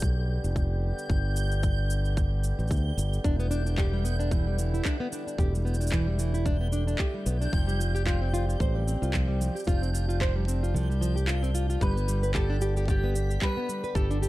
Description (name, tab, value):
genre	folktronica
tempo	112 BPM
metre	4/4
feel	swing 56% on 16ths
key	G mixolydian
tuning	A4 = 440 Hz
part	pedal harmonium	sustained chords	0.0-14.3 s	D3 to G4	-38 LUFS	equal	none
part	fingered electric bass	bass	0.0-14.3 s	E1 to D2	-26 LUFS	equal	none
part	electronic kick drum	drums	0.0-14.1 s	none	-27 LUFS	equal	overdrive
part	electronic shaker and handclaps	drums	0.0-14.3 s	none	-37 LUFS	right 1 dB	overdrive
part	backwards swelling texture	texture	0.0-14.3 s	G6 to B6	-41 LUFS	right 1 dB	built-in reverb
part	nylon-string guitar	arpeggios	3.2-14.3 s	E3 to D5	-32 LUFS	equal	digital delay
part	mandolin	melody	11.8-14.3 s	G4 to B4	-34 LUFS	right 1 dB	digital delay
room	little or no reverb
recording	none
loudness	-25 LUFS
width	side -17 dB against mid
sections	0.0-14.3 A section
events	kick drops out 10.7-11.8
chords	0.0 G; 3.2 Em7; 7.5 Fsus2; 11.8 G